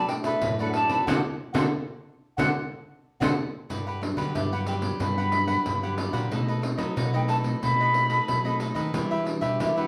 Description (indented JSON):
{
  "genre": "samba and choro",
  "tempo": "92 BPM",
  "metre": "4/4",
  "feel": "straight",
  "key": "G major",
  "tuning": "A4 = 440 Hz",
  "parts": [
    { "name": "mellow concert flute", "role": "melody", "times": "0.0-9.9 s", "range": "E5 to B5", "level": "-29 LUFS", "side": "equal", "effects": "none" },
    { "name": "cavaquinho", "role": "accompaniment", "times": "0.0-9.9 s", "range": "D4 to F#5", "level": "-35 LUFS", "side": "equal", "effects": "none" },
    { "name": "nylon-string guitar", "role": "accompaniment", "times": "0.0-9.9 s", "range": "F#2 to F#4", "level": "-34 LUFS", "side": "equal", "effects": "none" },
    { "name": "nylon-string guitar", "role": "bass", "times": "0.0-9.9 s", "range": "G2 to F#3", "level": "-32 LUFS", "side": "equal", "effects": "none" },
    { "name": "pandeiro", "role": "percussion", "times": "0.1-9.9 s", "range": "none", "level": "-34 LUFS", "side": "equal", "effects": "none" }
  ],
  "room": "wet large studio reverb, RT60 0.9 s",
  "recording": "band playing live in one room",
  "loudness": "-26 LUFS",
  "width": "mono",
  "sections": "0.0-3.7 A section; 3.7-9.9 B section",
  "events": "band accent 1.1-3.7",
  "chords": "0.0 Bm7; 1.1 D7; 3.7 Gmaj7; 6.3 B7b9; 8.9 Em9",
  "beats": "0.42 | 1.08 1.73 2.39 3.04 | 3.70 4.35 5.01 5.67 | 6.32 6.98 7.63 8.29 | 8.94 9.60"
}